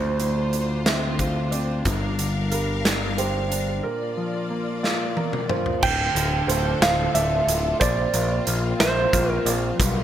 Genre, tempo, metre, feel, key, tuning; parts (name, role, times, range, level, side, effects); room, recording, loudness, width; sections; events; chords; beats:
post-rock; 60 BPM (dotted quarters); 6/8; straight; D minor; A4 = 440 Hz
clear studio string section; sustained chords; 0.0-10.0 s; D3 to F5; -31 LUFS; left 2 dB
felt-muted upright piano; arpeggios; 0.0-9.8 s; Bb4 to E5; -31 LUFS; right 6 dB; analog delay
mellow electric guitar; arpeggios; 0.0-10.0 s; D2 to Bb4; -28 LUFS; left 2 dB; analog delay
growling picked electric bass; bass; 0.0-10.0 s; D1 to D2; -26 LUFS; equal; overdrive
big rock drum kit; drums; 0.2-10.0 s; crash cymbal, hi-hat, kick drum, snare drum, toms; -25 LUFS; right 1 dB
clean lap steel guitar; melody; 5.8-9.5 s; C5 to G5; -24 LUFS; right 3 dB; analog delay
moderate booth ambience, RT60 0.2 s; -20 LUFS; side -10 dB against mid
0.0-5.8 A section; 5.8-10.0 B section
drum fill 4.8-5.8
0.0 Dm7; 1.9 Gm7; 3.8 Bb; 5.8 Dm; 7.8 Bbsus2
0.86 | 1.86 2.85 | 3.84 4.83 | 5.83 6.82 | 7.81 8.80 | 9.79